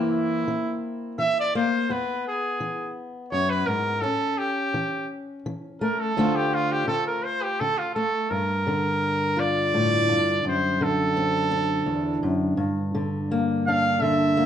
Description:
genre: acoustic folk duo or small band.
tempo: 84 BPM.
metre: 3/4.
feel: straight.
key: D minor.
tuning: A4 = 440 Hz.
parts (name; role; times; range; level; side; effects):
fingerpicked steel-string acoustic guitar; accompaniment; 0.0-14.5 s; D2 to F4; -25 LUFS; left 1 dB; none.
clear trumpet; melody; 0.1-14.5 s; E4 to F5; -24 LUFS; right 1 dB; none.
room: moderate large studio reverb, RT60 0.9 s.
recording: dark, warm production.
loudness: -22 LUFS.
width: side -9 dB against mid.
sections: 0.0-8.3 A section; 8.3-14.5 B section.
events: trumpet solo 0.0-8.3.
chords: 0.0 C7; 1.9 E; 4.0 A; 6.2 Dm7; 8.3 Gm7; 10.4 D7/F#; 12.6 Gm.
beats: 0.48 1.19 | 1.90 2.61 3.32 | 4.04 4.75 5.46 | 6.17 6.89 7.60 | 8.31 9.02 9.74 | 10.45 11.16 11.88 | 12.59 13.30 14.01.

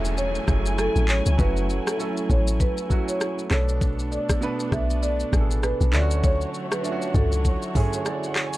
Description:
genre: afrobeats.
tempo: 99 BPM.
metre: 4/4.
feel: swing 58% on 16ths.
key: F# minor.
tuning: A4 = 440 Hz.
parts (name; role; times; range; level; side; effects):
marimba with medium mallets; melody; 0.0-7.3 s; A4 to E5; -30 LUFS; equal; digital delay, plate reverb.
warm grand piano; accompaniment; 0.0-8.6 s; B2 to G#5; -30 LUFS; right 4 dB; plate reverb.
dark studio string section; sustained chords; 0.0-8.6 s; F#3 to G#5; -32 LUFS; equal; plate reverb.
deep log drum bass; bass; 0.0-7.6 s; E1 to D2; -23 LUFS; equal; none.
afro-pop drum kit; drums; 0.0-8.6 s; handclaps, hi-hat, kick drum, rim click, shaker, toms; -24 LUFS; equal; none.
downlifter; sound effects; 0.0-3.8 s; none; -39 LUFS; left 1 dB; none.
room: light reverb.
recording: dark, warm production.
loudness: -21 LUFS.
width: side -17 dB against mid.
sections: 0.0-8.6 A section.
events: grand piano fill 7.8-8.6.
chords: 0.0 F#m7; 3.5 Bm7; 5.9 Dmaj7.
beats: 0.18 0.78 | 1.39 2.00 2.60 3.21 | 3.81 4.42 5.03 5.63 | 6.24 6.84 7.45 8.06.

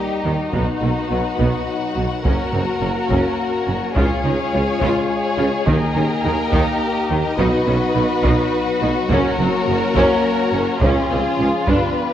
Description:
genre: cinematic, epic orchestral film score.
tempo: 70 BPM (dotted quarters).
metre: 6/8.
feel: straight.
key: unclear.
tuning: A4 = 438 Hz.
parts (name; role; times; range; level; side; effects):
dark symphonic violin section; melody; 0.0-12.1 s; F#4 to Db5; -25 LUFS; left 3 dB; none.
dark symphonic violin section; second line; 0.0-12.1 s; Eb4 to Ab4; -25 LUFS; left 2 dB; none.
mellow French horn section; sustained chords; 0.0-12.1 s; F3 to Gb4; -25 LUFS; left 3 dB; none.
rich studio string section; sustained chords; 0.0-12.1 s; B3 to G5; -26 LUFS; left 1 dB; none.
warm symphonic viola section; accompaniment; 0.2-11.9 s; Bb3 to F4; -25 LUFS; right 1 dB; none.
rich symphonic cello section; bass; 0.2-11.8 s; Db2 to Eb3; -26 LUFS; right 3 dB; none.
warm symphonic double bass section; bass; 0.2-11.8 s; Gb1 to Eb2; -26 LUFS; right 3 dB; none.
warm tuba; bass; 0.2-11.8 s; Gb1 to Eb2; -26 LUFS; right 3 dB; none.
taiko ensemble; drums; 0.5-12.1 s; none; -24 LUFS; equal; none.
timpani; percussion; 5.7-6.5 s; Eb3; -24 LUFS; left 1 dB; none.
room: moderate scoring stage reverb, RT60 1.6 s.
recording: worn, warbling old tape, cassette tape, warbly pitch drift.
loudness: -16 LUFS.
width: side -10 dB against mid.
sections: 0.0-12.1 A section.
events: none.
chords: 0.0 Eb; 0.5 B; 2.2 Gb; 4.0 Db; 5.7 Eb; 7.4 B; 9.1 Gb; 10.8 Db.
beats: | 0.53 1.39 | 2.25 3.10 | 3.96 4.82 | 5.67 6.53 | 7.39 8.25 | 9.10 9.96 | 10.82 11.68.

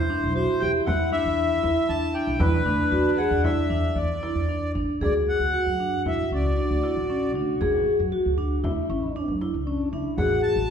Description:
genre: contemporary instrumental, chamber music in an uneven meter.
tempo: 116 BPM.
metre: 5/4.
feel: straight.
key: unclear.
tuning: A4 = 440 Hz.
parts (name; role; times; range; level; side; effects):
accordion; melody; 0.0-10.7 s; B4 to A5; -28 LUFS; equal; none.
mellow French horn; second line; 0.0-10.7 s; D4 to F#4; -28 LUFS; left 4 dB; none.
upright bass; bass; 0.0-10.7 s; A1 to F#2; -28 LUFS; equal; none.
vibraphone with medium hard mallets; arpeggios; 0.1-10.5 s; C#4 to G#4; -26 LUFS; right 1 dB; none.
frame drum; percussion; 0.9-10.4 s; none; -32 LUFS; left 1 dB; none.
room: wet scoring stage reverb, RT60 1.5 s.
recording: heard from further back in the room.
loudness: -22 LUFS.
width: side -7 dB against mid.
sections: 0.0-5.0 A section; 5.0-10.7 B section.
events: none.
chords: 0.0 Cmaj7; 2.4 E7(no3); 5.0 Dadd9; 10.2 A5.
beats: 0.36 0.87 1.38 1.89 | 2.41 2.92 3.44 3.96 4.49 | 5.02 5.54 6.06 6.58 7.09 | 7.61 8.13 8.64 9.15 9.67 | 10.18 10.69.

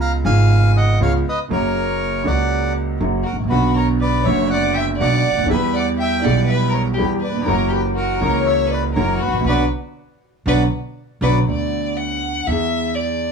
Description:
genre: tango.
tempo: 120 BPM.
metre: 4/4.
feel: rubato.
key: B harmonic minor.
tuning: A4 = 440 Hz.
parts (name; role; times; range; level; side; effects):
bandoneon; melody; 0.0-11.4 s; F#4 to A#5; -22 LUFS; left 1 dB; plate reverb.
warm baby grand piano; accompaniment; 0.0-13.3 s; F#1 to G#4; -20 LUFS; right 3 dB; none.
upright bass; bass; 0.0-13.3 s; F#1 to E2; -20 LUFS; right 1 dB; none.
warm violin; second line; 3.2-13.3 s; F#4 to F#5; -24 LUFS; left 5 dB; none.
room: moderate studio reverb, RT60 0.8 s.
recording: none.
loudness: -16 LUFS.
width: side -6 dB against mid.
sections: 0.0-11.5 A section; 11.5-13.3 B section.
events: band accent 9.5-11.5; violin solo 11.5-13.3.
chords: 0.0 C#7; 1.5 F#; 3.5 Bm; 5.5 Em; 7.5 F#7; 9.5 Bm; 11.5 D6; 12.5 E.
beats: 0.00 0.50 1.00 | 1.50 2.00 2.50 3.00 | 3.50 4.00 4.51 5.00 | 5.50 6.00 6.49 6.99 | 7.48 7.97 8.47 8.97 | 9.46 9.96 10.46 10.97 | 11.47 11.97 12.47 12.97.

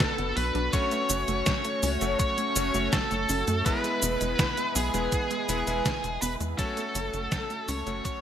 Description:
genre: synthwave.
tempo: 82 BPM.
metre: 4/4.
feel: straight.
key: F# minor.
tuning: A4 = 440 Hz.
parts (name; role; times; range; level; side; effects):
high-gain lead guitar; melody; 0.0-8.2 s; G#4 to C#5; -29 LUFS; equal; distortion.
chorused pulse-width pad; sustained chords; 0.0-8.2 s; G#3 to C#5; -34 LUFS; equal; sidechain pumping.
wide unison pluck; arpeggios; 0.0-8.2 s; E3 to F#4; -36 LUFS; right 2 dB; cassette tape, digital delay.
detuned 8-bit digital drum machine; drums; 0.0-8.2 s; hi-hat, shaker, snare drum; -30 LUFS; right 1 dB; gated reverb.
electronic kick drum; drums; 0.0-8.2 s; none; -30 LUFS; equal; none.
tight sequencer bass; bass; 0.2-8.0 s; E1 to F#2; -32 LUFS; equal; sidechain pumping.
bright electric grand piano; stabs; 0.7-8.2 s; G#3 to C#5; -34 LUFS; left 3 dB; none.
room: moderate lush hall reverb, RT60 2.2 s.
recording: bright 1980s-style digital production.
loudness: -25 LUFS.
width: side -9 dB against mid.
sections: 0.0-8.2 A section.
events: fade-out 4.6-8.2.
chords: 0.0 Bm; 0.7 F#m; 3.7 E; 6.6 F#m.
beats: 0.00 | 0.73 1.47 2.20 2.93 | 3.66 4.39 5.12 5.86 | 6.59 7.32 8.05.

